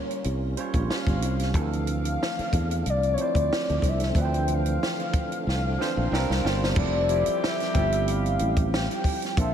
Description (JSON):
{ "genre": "R&B, neo-soul", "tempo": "92 BPM", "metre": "4/4", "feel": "swing 55% on 16ths", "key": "F major", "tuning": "A4 = 440 Hz", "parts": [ { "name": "warm velvety synth lead", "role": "melody", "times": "0.0-9.5 s", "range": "C5 to G5", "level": "-29 LUFS", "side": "left 3 dB", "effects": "chorus, diffuse ambient delay" }, { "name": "barky tine electric piano", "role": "accompaniment", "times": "0.0-9.5 s", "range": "E3 to A5", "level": "-31 LUFS", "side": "right 5 dB", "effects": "overdrive, lush chorus" }, { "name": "tonewheel organ", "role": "sustained chords", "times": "0.0-6.8 s", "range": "C3 to F4", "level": "-37 LUFS", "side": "left 1 dB", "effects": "slow rotary speaker, overdrive, chorus vibrato" }, { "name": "compact cocktail drum kit", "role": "drums", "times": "0.1-9.5 s", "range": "crash cymbal, hi-hat, kick drum, snare drum", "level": "-28 LUFS", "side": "equal", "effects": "none" }, { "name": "sustaining fretless electric bass", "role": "bass", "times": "0.3-9.5 s", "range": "F1 to E2", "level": "-26 LUFS", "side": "equal", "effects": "none" }, { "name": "clear horn section", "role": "stabs", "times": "6.8-9.5 s", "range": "E3 to G4", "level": "-37 LUFS", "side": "left 3 dB", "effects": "diffuse ambient delay" } ], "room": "moderate lush hall reverb, RT60 2.6 s", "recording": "dreamy mix soaked in reverb", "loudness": "-23 LUFS", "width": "side -9 dB against mid", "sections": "0.0-6.8 A section; 6.8-9.5 B section", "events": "drum fill 5.5-6.8; tine electric piano fill 5.5-6.8", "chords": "0.0 Bbm6; 1.5 Dm9; 6.1 C7sus4; 6.8 Fmaj9" }